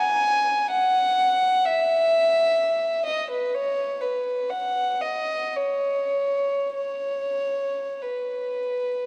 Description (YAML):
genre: classical, free, expressive piece for unaccompanied violin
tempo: 46-67 BPM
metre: 3/4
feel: rubato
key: B major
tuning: A4 = 441 Hz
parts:
  - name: dark violin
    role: solo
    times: 0.0-9.1 s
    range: B4 to G#5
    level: -24 LUFS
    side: equal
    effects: none
room: moderate church reverb, RT60 2.8 s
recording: dark, warm production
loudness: -24 LUFS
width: mono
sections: 0.0-9.1 A section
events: none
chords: none